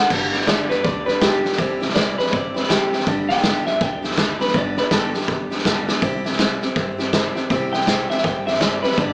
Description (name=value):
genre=rockabilly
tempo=162 BPM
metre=4/4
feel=swing 61% on 8ths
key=unclear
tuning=A4 = 440 Hz
part: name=electric guitar through a small old amp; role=melody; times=0.0-9.1 s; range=G4 to G5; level=-25 LUFS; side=equal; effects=slapback echo
part: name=picked steel-string acoustic guitar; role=accompaniment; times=0.0-9.1 s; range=G2 to A4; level=-27 LUFS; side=equal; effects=none
part: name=upright bass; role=bass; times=0.1-9.1 s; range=G1 to G2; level=-35 LUFS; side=equal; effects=none
part: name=vintage drum kit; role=drums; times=0.1-9.1 s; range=crash cymbal, hi-hat, kick drum, snare drum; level=-23 LUFS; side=equal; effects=none
room=moderate large studio reverb, RT60 1.2 s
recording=band playing live in one room, small speaker sound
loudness=-20 LUFS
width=mono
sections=0.1-9.1 A section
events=drum fill 5.8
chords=0.1 G; 1.6 C; 3.1 G; 6.0 C